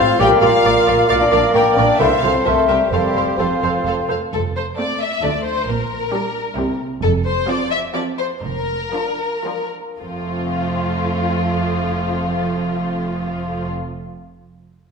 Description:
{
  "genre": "quick classical-period movement for symphony orchestra",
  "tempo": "107-135 BPM",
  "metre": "3/4",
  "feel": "straight",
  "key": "F major",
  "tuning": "A4 = 440 Hz",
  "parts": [
    { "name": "warm studio violin section", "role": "melody", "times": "0.0-13.7 s", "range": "F4 to G5", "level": "-24 LUFS", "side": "left 4 dB", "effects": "none" },
    { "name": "mellow clarinet", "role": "second line", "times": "0.0-4.1 s", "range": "A4 to Bb4", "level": "-23 LUFS", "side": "right 3 dB", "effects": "none" },
    { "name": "mellow concert flute", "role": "second line", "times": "0.0-4.1 s", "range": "E5 to G5", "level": "-23 LUFS", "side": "left 2 dB", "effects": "none" },
    { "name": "mellow cor anglais", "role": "second line", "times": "0.0-4.1 s", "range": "C5 to D5", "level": "-24 LUFS", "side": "right 4 dB", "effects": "none" },
    { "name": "warm studio violin section", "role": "second line", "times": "0.0-13.7 s", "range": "C4 to G5", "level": "-25 LUFS", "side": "left 4 dB", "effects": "none" },
    { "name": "dark bassoon", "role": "accompaniment", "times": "0.0-4.1 s", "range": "Bb3 to C4", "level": "-22 LUFS", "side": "right 2 dB", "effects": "none" },
    { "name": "warm studio viola section", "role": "accompaniment", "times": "0.0-13.7 s", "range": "F3 to D5", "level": "-24 LUFS", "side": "right 2 dB", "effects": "none" },
    { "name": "warm French horn section", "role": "sustained chords", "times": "0.0-4.1 s", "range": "F3 to G4", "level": "-19 LUFS", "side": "left 4 dB", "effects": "none" },
    { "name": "rich studio cello section", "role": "bass", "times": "0.0-13.7 s", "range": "D2 to C3", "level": "-26 LUFS", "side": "right 4 dB", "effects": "none" },
    { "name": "warm studio double bass section", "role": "bass", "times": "0.0-13.7 s", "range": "F1 to D2", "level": "-26 LUFS", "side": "right 4 dB", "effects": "none" }
  ],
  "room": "wet recital hall reverb, RT60 1.4 s",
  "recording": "recorded in a church or concert hall",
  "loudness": "-16 LUFS",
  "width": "side -5 dB against mid",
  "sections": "0.0-4.3 A section; 4.3-10.0 B section; 10.0-13.3 C section",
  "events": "slowing down 6.3-10.0",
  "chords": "0.2 Bb; 1.5 Gm/Bb; 2.0 F/C; 2.5 C7; 2.9 F; 5.2 Dm; 5.7 Gm/Bb; 6.6 C7; 7.0 F; 8.4 Bb/F; 10.0 F"
}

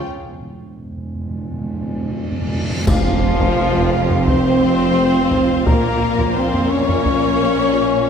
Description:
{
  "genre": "cinematic, epic orchestral film score",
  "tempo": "86 BPM",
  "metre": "4/4",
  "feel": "straight",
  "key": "unclear",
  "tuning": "A4 = 440 Hz",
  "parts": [
    { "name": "clear symphonic violin section", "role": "melody", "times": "0.0-8.1 s", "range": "F4 to Db5", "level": "-28 LUFS", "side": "left 4 dB", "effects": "none" },
    { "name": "clear French horn section", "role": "sustained chords", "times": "0.0-8.1 s", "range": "F3 to Db4", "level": "-19 LUFS", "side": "left 4 dB", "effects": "none" },
    { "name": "cymbal swell, clash cymbals and concert bass drum", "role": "percussion", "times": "0.1-4.2 s", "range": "none", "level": "-27 LUFS", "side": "equal", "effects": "none" },
    { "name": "timpani", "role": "percussion", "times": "0.1-3.9 s", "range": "F2", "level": "-24 LUFS", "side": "right 1 dB", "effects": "none" },
    { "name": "reverse cymbal and impact", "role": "sound effects", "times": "2.5-5.7 s", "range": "none", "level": "-30 LUFS", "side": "right 1 dB", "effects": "none" },
    { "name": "bright studio violin section", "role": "second line", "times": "2.9-8.1 s", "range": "F4 to Db5", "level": "-29 LUFS", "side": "left 3 dB", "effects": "none" },
    { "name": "silver concert flute", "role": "second line", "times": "2.9-8.1 s", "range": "F5 to Db6", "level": "-25 LUFS", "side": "left 1 dB", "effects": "none" },
    { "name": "clear symphonic viola section", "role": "accompaniment", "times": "2.9-8.1 s", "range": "F3 to Db4", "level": "-26 LUFS", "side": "right 3 dB", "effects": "none" },
    { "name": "clear symphonic string section", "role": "sustained chords", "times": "2.9-8.1 s", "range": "Bb3 to F5", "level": "-25 LUFS", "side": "right 2 dB", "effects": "none" },
    { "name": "clear symphonic double bass section", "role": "bass", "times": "2.9-8.1 s", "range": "F1 to Bb1", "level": "-24 LUFS", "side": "right 5 dB", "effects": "none" },
    { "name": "rich studio cello section", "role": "bass", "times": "2.9-8.1 s", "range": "F2 to Bb2", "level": "-23 LUFS", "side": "right 3 dB", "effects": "none" },
    { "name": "taiko ensemble", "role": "drums", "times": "2.9-7.7 s", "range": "none", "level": "-22 LUFS", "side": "equal", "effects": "none" }
  ],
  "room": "wet scoring stage reverb, RT60 1.7 s",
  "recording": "none",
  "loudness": "-15 LUFS",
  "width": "side -7 dB against mid",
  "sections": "0.0-2.9 A section; 2.9-8.1 B section",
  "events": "break 0.1-2.9; timpani fill 0.1-2.9; drum fill 2.2-2.9; reverse cymbal 2.5-2.9; band accent 2.9-3.6; impact 2.9-5.7",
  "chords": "0.1 N.C.; 2.9 Fsus2; 5.7 Bbm"
}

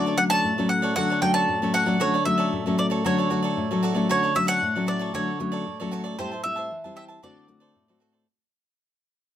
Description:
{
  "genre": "samba",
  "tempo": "115 BPM",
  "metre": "4/4",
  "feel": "straight",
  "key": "D major",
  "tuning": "A4 = 438 Hz",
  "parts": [
    { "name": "bowl-back mandolin", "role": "melody", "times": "0.0-8.0 s", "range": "C5 to A5", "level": "-25 LUFS", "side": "right 1 dB", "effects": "none" },
    { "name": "cavaquinho", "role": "accompaniment", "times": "0.0-8.3 s", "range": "F#4 to A5", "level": "-31 LUFS", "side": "right 4 dB", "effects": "none" },
    { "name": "nylon-string guitar", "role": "accompaniment", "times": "0.0-8.3 s", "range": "A2 to F#4", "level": "-25 LUFS", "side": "left 2 dB", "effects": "none" }
  ],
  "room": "moderate studio reverb, RT60 0.7 s",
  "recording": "close, detailed microphones",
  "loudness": "-21 LUFS",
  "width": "side -11 dB against mid",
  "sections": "0.0-4.1 A section; 4.1-8.3 B section",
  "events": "fade-out 4.1-8.3",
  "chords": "0.0 Dmaj7; 6.2 Am7; 7.2 D7"
}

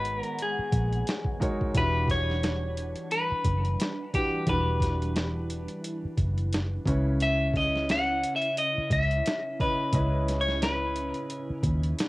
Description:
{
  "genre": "R&B, neo-soul",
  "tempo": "88 BPM",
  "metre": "4/4",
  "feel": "swing 59% on 16ths",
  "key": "unclear",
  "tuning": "A4 = 439 Hz",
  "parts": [
    { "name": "clean electric guitar", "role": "melody", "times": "0.0-11.9 s", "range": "G4 to F#5", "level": "-29 LUFS", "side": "left 1 dB", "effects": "cassette tape" },
    { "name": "warm concert grand piano", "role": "accompaniment", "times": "0.0-12.1 s", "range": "C#3 to E5", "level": "-33 LUFS", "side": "right 1 dB", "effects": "cassette tape" },
    { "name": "hollow soft pad", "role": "sustained chords", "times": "0.0-12.1 s", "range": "C#3 to F#5", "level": "-40 LUFS", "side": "equal", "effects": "ensemble chorus, cassette tape" },
    { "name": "vintage muted fingered electric bass", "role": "bass", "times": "0.0-11.9 s", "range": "E1 to D#2", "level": "-28 LUFS", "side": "equal", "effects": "none" },
    { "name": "boom bap sampler-style drum kit", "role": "drums", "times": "0.0-12.1 s", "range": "hi-hat, kick drum, snare drum", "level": "-31 LUFS", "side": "equal", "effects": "cassette tape" }
  ],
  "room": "light reverb",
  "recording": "home recording on cassette",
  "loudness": "-25 LUFS",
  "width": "side -20 dB against mid",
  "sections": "0.0-12.1 A section",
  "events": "none",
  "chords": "0.0 G#m9; 1.7 Em9; 6.9 C#m9"
}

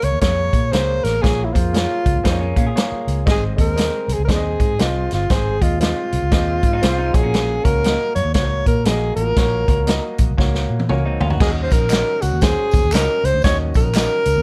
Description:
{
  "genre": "uptempo 1960s-style soul",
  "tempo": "118 BPM",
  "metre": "4/4",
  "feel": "swing 61% on 8ths",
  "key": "unclear",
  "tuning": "A4 = 440 Hz",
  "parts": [
    { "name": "breathy alto saxophone", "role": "melody", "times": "0.0-14.4 s", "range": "E4 to Db5", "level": "-23 LUFS", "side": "equal", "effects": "plate reverb" },
    { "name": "clear upright piano", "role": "accompaniment", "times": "0.0-14.4 s", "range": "Ab2 to Eb5", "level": "-29 LUFS", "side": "equal", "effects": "plate reverb" },
    { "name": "vintage muted fingered electric bass", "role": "bass", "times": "0.0-14.4 s", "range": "G1 to Bb2", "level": "-24 LUFS", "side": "equal", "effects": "none" },
    { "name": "vintage drum kit", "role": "drums", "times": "0.0-14.3 s", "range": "crash cymbal, hi-hat, kick drum, snare drum, toms", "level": "-21 LUFS", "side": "equal", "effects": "none" },
    { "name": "electric guitar through a small old amp", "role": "riff", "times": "2.3-3.2, 6.7-11.5 s", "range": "Bb3 to Ab4", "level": "-30 LUFS", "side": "equal", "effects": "none" },
    { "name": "tambourine and handclaps", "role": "percussion", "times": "11.7-14.4 s", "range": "none", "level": "-34 LUFS", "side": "equal", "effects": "none" }
  ],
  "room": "light reverb",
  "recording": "none",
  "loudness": "-18 LUFS",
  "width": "mono",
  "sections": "0.0-11.4 A section; 11.4-14.4 B section",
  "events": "drum fill 10.4-11.4",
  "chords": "0.0 Bbm7; 3.3 Ab; 7.1 Gb; 11.4 Ebm7"
}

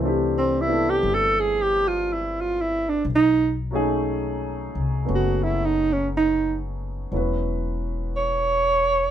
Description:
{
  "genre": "jazz ballad",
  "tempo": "59 BPM",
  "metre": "4/4",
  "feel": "swing 67% on 8ths",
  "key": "unclear",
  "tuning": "A4 = 442 Hz",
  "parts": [
    { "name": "warm baby grand piano", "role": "accompaniment", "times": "0.0-9.1 s", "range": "E3 to D5", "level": "-27 LUFS", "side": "left 1 dB", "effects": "none" },
    { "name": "upright bass", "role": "bass", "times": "0.0-9.1 s", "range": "E1 to C2", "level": "-28 LUFS", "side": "left 1 dB", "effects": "none" },
    { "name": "warm alto saxophone", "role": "melody", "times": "0.4-9.1 s", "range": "C4 to C#5", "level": "-20 LUFS", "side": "right 2 dB", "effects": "none" }
  ],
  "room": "light reverb",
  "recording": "minimal, uncompressed stereo recording",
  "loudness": "-20 LUFS",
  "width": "side -10 dB against mid",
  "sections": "0.0-7.1 A section; 7.1-9.1 B section",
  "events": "alto saxophone solo 0.0-7.1",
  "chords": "0.0 C69; 3.1 B13; 7.1 Esus2"
}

